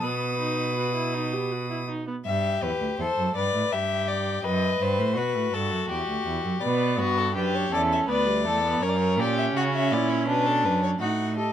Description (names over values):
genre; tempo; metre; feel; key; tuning
classical, baroque-style fugue for string quartet; 82 BPM; 3/4; straight; unclear; A4 = 441 Hz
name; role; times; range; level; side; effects
warm violin; melody; 0.0-11.5 s; G4 to D#6; -29 LUFS; left 5 dB; none
dark violin; second line; 0.0-11.5 s; D4 to B4; -27 LUFS; left 2 dB; none
warm viola; accompaniment; 0.0-2.1, 6.6-11.5 s; G3 to G4; -30 LUFS; right 3 dB; none
rich cello; bass; 0.0-11.5 s; D2 to C#3; -28 LUFS; right 4 dB; none
room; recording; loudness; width
little or no reverb; close, detailed microphones; -23 LUFS; side -10 dB against mid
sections
0.0-2.3 A section; 2.3-11.0 B section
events
none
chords
0.0 B; 2.3 Em; 3.7 Em/G; 4.4 B7/F#; 5.9 Em; 6.6 Bm; 8.1 Bm/D; 8.8 F#7; 10.3 Bm; 11.0 B7/A (rootless)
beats
| 0.03 0.77 1.52 | 2.26 2.99 3.71 | 4.44 5.17 5.90 | 6.62 7.35 8.09 | 8.82 9.55 10.28 | 11.01